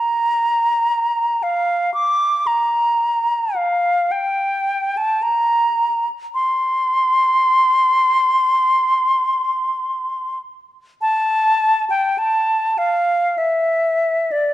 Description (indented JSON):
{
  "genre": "classical, free, expressive piece for unaccompanied flute",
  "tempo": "46-58 BPM",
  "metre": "4/4",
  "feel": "rubato",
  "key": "unclear",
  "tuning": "A4 = 440 Hz",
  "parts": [
    { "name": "silver concert flute", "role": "solo", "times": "0.0-14.5 s", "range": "D5 to D6", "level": "-16 LUFS", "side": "equal", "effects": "none" }
  ],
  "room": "moderate scoring stage reverb, RT60 1.4 s",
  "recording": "dark, warm production",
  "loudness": "-16 LUFS",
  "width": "side -14 dB against mid",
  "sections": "0.0-14.5 A section",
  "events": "none",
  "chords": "none"
}